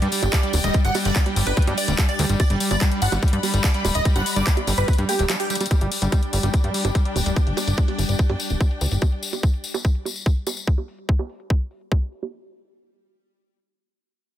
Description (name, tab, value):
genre	psychedelic trance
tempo	145 BPM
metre	4/4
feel	straight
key	G major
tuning	A4 = 440 Hz
part	evolving wavetable pad	sustained chords	0.0-9.1 s	G3	-32 LUFS	left 1 dB	phaser, built-in reverb, sidechain pumping
part	overdriven acid bass	riff	0.0-7.4 s	F#3 to B3	-29 LUFS	moving between left 3 dB and right 4 dB	distortion, auto-pan, vintage 12-bit sampler grit, sidechain pumping, dub echo
part	plucky analog bass	bass	0.0-9.0 s	D1 to G2	-22 LUFS	equal	none
part	drum and bass drum kit	drums	0.0-12.3 s	bongos, handclaps, hi-hat	-27 LUFS	right 2 dB	overdrive, low-pass filter on hats, low-pass filter on perc, low-pass filter on snare
part	rich chamber string section	texture	0.0-10.7 s	D4 to B5	-32 LUFS	left 1 dB	sidechain pumping
part	tambourine	percussion	0.1-10.7 s	none	-32 LUFS	left 5 dB	none
part	supersaw stab	melody	0.3-5.6 s	G4 to F#5	-28 LUFS	right 2 dB	phaser, sidechain pumping, dub echo
part	electronic kick drum	drums	0.3-12.0 s	none	-19 LUFS	equal	overdrive
room	digital ambience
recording	dense, heavily limited modern master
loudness	-19 LUFS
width	side -12 dB against mid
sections	0.0-5.7 A section; 5.7-12.3 B section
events	drop 0.0-5.7; break 5.3-5.7; drum fill 5.5; fade-out on string section 5.7-10.7; filter sweep on drum 5.7-12.3; filter sweep on analog synth bass 5.7-9.0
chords	0.0 G5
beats	0.33 | 0.74 1.16 1.57 1.99 | 2.40 2.81 3.23 3.64 | 4.05 4.47 4.88 5.29 | 5.71 6.12 6.54 6.95 | 7.36 7.78 8.19 8.61 | 9.02 9.43 9.85 10.26 | 10.67 11.09 11.50 11.92